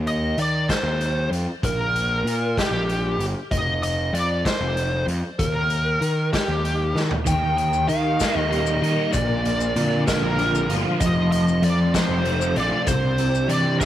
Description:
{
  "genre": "psychedelic rock",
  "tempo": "64 BPM (dotted quarters)",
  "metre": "6/8",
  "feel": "straight",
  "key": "F mixolydian",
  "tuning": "A4 = 440 Hz",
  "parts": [
    { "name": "fuzz picked electric bass", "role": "bass", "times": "0.0-13.8 s", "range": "F1 to Eb3", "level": "-25 LUFS", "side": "equal", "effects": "overdrive" },
    { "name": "fuzz lead guitar", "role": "melody", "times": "0.1-13.9 s", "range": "G4 to G5", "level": "-24 LUFS", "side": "equal", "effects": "wah, distortion, tape echo" },
    { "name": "raw garage drum kit", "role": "drums", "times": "0.1-13.9 s", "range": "hi-hat, kick drum, snare drum, toms", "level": "-28 LUFS", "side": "equal", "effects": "none" },
    { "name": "string machine, violas", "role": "sustained chords", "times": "7.3-13.9 s", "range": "A3 to Bb4", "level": "-31 LUFS", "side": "right 12 dB", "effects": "ensemble chorus" },
    { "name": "crunchy overdriven guitar", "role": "riff", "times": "7.3-13.9 s", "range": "Bb2 to F4", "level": "-22 LUFS", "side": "equal", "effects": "rotary speaker" },
    { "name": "maracas", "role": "percussion", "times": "7.3-13.9 s", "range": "none", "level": "-34 LUFS", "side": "left 14 dB", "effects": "none" }
  ],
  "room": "small room ambience",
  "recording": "1960s-style stereo with parts hard left and right",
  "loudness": "-19 LUFS",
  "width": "side -12 dB against mid",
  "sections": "0.0-13.9 A section",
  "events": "drum fill 7.0-7.3",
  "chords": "0.0 Cm/Eb; 1.6 Gm; 3.5 F5; 5.4 Eb; 9.1 Bb; 11.0 F; 12.9 Cadd9"
}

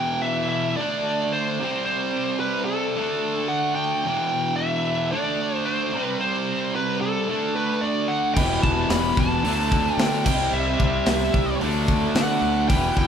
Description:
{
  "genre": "hard rock",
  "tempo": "111 BPM",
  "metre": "4/4",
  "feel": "straight",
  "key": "unclear",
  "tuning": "A4 = 440 Hz",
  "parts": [
    { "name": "bluesy overdriven lead guitar", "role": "melody", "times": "0.0-13.1 s", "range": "A4 to B5", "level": "-25 LUFS", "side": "equal", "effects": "distortion" },
    { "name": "high-gain distorted guitar", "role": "riff", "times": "0.0-13.1 s", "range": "E2 to D4", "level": "-25 LUFS", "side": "right 1 dB", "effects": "distortion" },
    { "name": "brassy analog pad", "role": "sustained chords", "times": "8.4-13.1 s", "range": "E3 to F#5", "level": "-36 LUFS", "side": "left 1 dB", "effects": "none" },
    { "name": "raw garage guitar", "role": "riff", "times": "8.4-13.1 s", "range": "C3 to E4", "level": "-28 LUFS", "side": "equal", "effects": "overdrive" },
    { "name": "fingered electric bass", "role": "bass", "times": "8.4-13.1 s", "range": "E1 to D3", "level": "-27 LUFS", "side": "left 1 dB", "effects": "none" },
    { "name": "tight metal drum kit", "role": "drums", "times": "8.4-13.1 s", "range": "crash cymbal, hi-hat, kick drum, snare drum", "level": "-24 LUFS", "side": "equal", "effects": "none" }
  ],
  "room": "moderate large studio reverb, RT60 1.1 s",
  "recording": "band playing live in one room",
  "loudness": "-20 LUFS",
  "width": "side -8 dB against mid",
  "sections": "0.0-13.1 A section",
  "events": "none",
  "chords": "0.0 Em; 0.8 D5; 1.6 C5; 3.0 D5; 4.0 Em; 5.1 D5; 5.9 C5; 7.3 D5; 8.4 Em; 9.4 D; 10.3 C; 11.6 D"
}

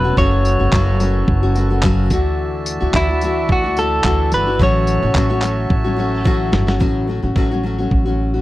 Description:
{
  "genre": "acoustic pop",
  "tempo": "109 BPM",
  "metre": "4/4",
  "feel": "swing 55% on 16ths",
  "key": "unclear",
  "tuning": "A4 = 440 Hz",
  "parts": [
    { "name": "direct-recorded clean electric guitar", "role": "melody", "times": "0.0-6.2 s", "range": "E4 to C#5", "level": "-20 LUFS", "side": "equal", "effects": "none" },
    { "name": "nylon-string guitar", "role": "accompaniment", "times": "0.0-8.4 s", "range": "F#2 to F#4", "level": "-20 LUFS", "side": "left 3 dB", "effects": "none" },
    { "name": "hand-pumped harmonium", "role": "sustained chords", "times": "0.0-6.8 s", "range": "F#4 to A5", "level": "-27 LUFS", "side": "right 3 dB", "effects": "none" },
    { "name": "upright bass", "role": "bass", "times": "0.0-8.4 s", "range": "E1 to D2", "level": "-19 LUFS", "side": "equal", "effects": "none" },
    { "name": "dusty soul sampler-style drum kit", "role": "drums", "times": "0.2-8.1 s", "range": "handclaps, kick drum, snare drum, tambourine", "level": "-19 LUFS", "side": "equal", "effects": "none" }
  ],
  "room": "little or no reverb",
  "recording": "dry, close 1970s-style studio recording",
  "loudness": "-14 LUFS",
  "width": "side -16 dB against mid",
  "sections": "0.0-6.8 A section; 6.8-8.4 B section",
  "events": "drum fill 5.7-6.8",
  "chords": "0.0 F#m; 2.1 Dadd9; 4.6 A6"
}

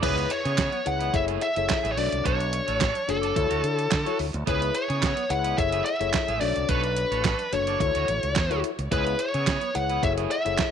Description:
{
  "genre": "early-eighties boogie funk",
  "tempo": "108 BPM",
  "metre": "4/4",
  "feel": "straight",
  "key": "unclear",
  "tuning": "A4 = 439 Hz",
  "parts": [
    { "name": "bluesy overdriven lead guitar", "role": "melody", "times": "0.0-10.7 s", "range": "A4 to F#5", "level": "-27 LUFS", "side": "equal", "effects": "distortion, tape echo" },
    { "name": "tine electric piano", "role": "accompaniment", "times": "0.0-10.7 s", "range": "D4 to C#5", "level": "-30 LUFS", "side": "left 15 dB", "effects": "slow stereo tremolo" },
    { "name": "electric guitar at the edge of break-up", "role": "riff", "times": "0.0-10.6 s", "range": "A3 to D5", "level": "-34 LUFS", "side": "right 12 dB", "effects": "wide subtle chorus" },
    { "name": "fretless electric bass", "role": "bass", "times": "0.0-10.6 s", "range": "F#1 to D3", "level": "-30 LUFS", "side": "equal", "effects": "none" },
    { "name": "clean 12-bit digital drum machine", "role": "drums", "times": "0.0-10.7 s", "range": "crash cymbal, handclaps, hi-hat, kick drum, snare drum", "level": "-28 LUFS", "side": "right 4 dB", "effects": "none" }
  ],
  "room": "light reverb",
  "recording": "1960s-style stereo with parts hard left and right",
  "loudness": "-23 LUFS",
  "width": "side -8 dB against mid",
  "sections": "0.0-10.7 A section",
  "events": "none",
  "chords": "0.0 C#m7; 1.1 F#m9; 2.0 Bm9; 3.4 Dmaj9; 4.5 C#m7; 5.6 F#m9; 6.4 Bm9; 7.8 Dmaj9; 8.9 C#m7; 10.0 F#m9"
}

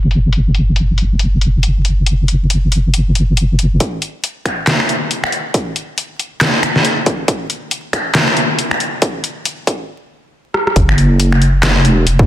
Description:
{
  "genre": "deep dubstep",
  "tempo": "138 BPM",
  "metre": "4/4",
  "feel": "swing 59% on 16ths, half-time",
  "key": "unclear",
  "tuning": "A4 = 440 Hz",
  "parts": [
    { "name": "deep soft wobble bass", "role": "bass", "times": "0.0-3.8, 10.8-12.3 s", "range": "E1 to F#1", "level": "-12 LUFS", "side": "equal", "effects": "chorus" },
    { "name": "dubstep drum kit", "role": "drums", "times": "0.1-12.2 s", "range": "finger snaps, handclaps, hi-hat, rim click, snare drum", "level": "-15 LUFS", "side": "equal", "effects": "none" },
    { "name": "electronic kick drum", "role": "drums", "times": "3.8-12.3 s", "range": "none", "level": "-16 LUFS", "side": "equal", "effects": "high-pass filter on kick, high-pass filter on room" }
  ],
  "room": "light reverb",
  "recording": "dense, heavily limited modern master, vinyl crackle, low-pass filter",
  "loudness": "-12 LUFS",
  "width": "side -13 dB against mid",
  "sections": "0.0-3.8 A section; 3.8-10.8 B section; 10.8-12.3 C section",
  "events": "filter sweep 0.0-3.8; build-up 3.8-10.8; stop 9.9-10.8; drum fill 10.5; drop 10.8-12.3",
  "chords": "none"
}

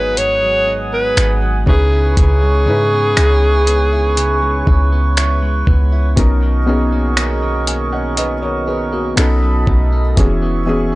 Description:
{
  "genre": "contemporary R&B",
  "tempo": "60 BPM",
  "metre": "4/4",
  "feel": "straight",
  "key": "unclear",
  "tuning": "A4 = 441 Hz",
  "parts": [
    { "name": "breathy alto saxophone", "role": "melody", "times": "0.0-5.1 s", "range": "G#4 to C#5", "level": "-16 LUFS", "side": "equal", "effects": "analog delay" },
    { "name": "felt-muted upright piano", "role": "accompaniment", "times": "0.0-11.0 s", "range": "B2 to G#5", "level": "-22 LUFS", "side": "left 2 dB", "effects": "none" },
    { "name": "mellow accordion", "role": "sustained chords", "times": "0.0-11.0 s", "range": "G#4 to C#6", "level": "-22 LUFS", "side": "right 3 dB", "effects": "sidechain pumping" },
    { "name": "direct-recorded clean electric guitar", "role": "arpeggios", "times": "0.0-11.0 s", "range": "G#2 to G#4", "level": "-25 LUFS", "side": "right 2 dB", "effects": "wide subtle chorus, analog delay" },
    { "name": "clean 808-style bass", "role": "bass", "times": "0.0-11.0 s", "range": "E1 to G#2", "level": "-16 LUFS", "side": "equal", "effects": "transformer saturation" },
    { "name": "dusty soul sampler-style drum kit", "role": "drums", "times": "0.2-10.4 s", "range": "finger snaps, hi-hat, kick drum", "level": "-16 LUFS", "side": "equal", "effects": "none" }
  ],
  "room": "small room ambience",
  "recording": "dry, gritty hardware recording, nothing above 10.9 kHz",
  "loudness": "-12 LUFS",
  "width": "side -19 dB against mid",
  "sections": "0.0-11.0 A section",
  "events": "none",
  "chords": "0.0 G#m7; 1.7 C#m7; 6.2 Bmaj9; 9.2 B7; 10.2 E6"
}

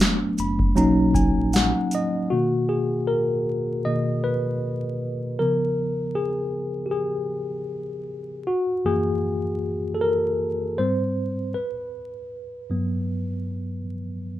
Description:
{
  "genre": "lo-fi hip hop",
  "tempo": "78 BPM",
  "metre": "4/4",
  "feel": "swing 59% on 16ths",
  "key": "B major",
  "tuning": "A4 = 435 Hz",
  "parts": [
    { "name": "mellow tine electric piano", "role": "accompaniment", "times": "0.0-14.4 s", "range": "F#2 to B5", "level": "-23 LUFS", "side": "left 1 dB", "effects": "medium stereo tremolo, cassette tape, plate reverb" },
    { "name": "booming analog drum machine", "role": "drums", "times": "0.0-2.1 s", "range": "hi-hat, kick drum, snare drum", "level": "-22 LUFS", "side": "equal", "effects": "none" },
    { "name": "sub bass with octave", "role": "bass", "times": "0.2-1.7 s", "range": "F#1 to B1", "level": "-26 LUFS", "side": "equal", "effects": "none" },
    { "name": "maracas", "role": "percussion", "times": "0.4-2.1 s", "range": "none", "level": "-40 LUFS", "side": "right 8 dB", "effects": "none" }
  ],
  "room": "moderate small room reverb, RT60 0.5 s",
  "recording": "rough home demo mix, vinyl crackle",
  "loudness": "-22 LUFS",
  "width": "side -14 dB against mid",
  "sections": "0.0-2.3 A section; 2.3-14.4 B section",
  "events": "tine electric piano fill 0.0-2.3; tine electric piano solo 2.3-14.4",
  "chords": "0.0 Gmaj7 (rootless); 0.8 Bmaj7; 5.4 C#7; 8.5 F#7; 10.8 G#maj7; 11.5 Gmaj7"
}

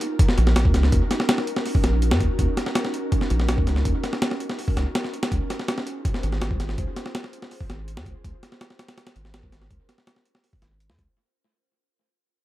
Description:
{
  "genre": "drum and bass, jungle",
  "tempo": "164 BPM",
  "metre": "4/4",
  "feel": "straight",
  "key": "unclear",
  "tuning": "A4 = 440 Hz",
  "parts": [
    { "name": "ethereal airy pad", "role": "sustained chords", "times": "0.0-11.1 s", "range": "Db4 to C5", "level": "-30 LUFS", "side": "right 1 dB", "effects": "ensemble chorus, built-in reverb, vintage 12-bit sampler grit" },
    { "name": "breakbeat sampler-style drum kit", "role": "drums", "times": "0.0-11.1 s", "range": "hi-hat, kick drum, snare drum", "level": "-23 LUFS", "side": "equal", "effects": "tape echo" },
    { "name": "saturated sub bass", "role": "bass", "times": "0.4-11.1 s", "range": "Ab1 to Gb2", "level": "-22 LUFS", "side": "equal", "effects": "none" }
  ],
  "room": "little or no reverb",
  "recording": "echo-heavy mix",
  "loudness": "-20 LUFS",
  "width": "side -15 dB against mid",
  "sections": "0.0-11.2 A section",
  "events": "fade-out 0.0-11.2",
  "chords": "0.0 Ebm7; 5.3 Dbmaj7"
}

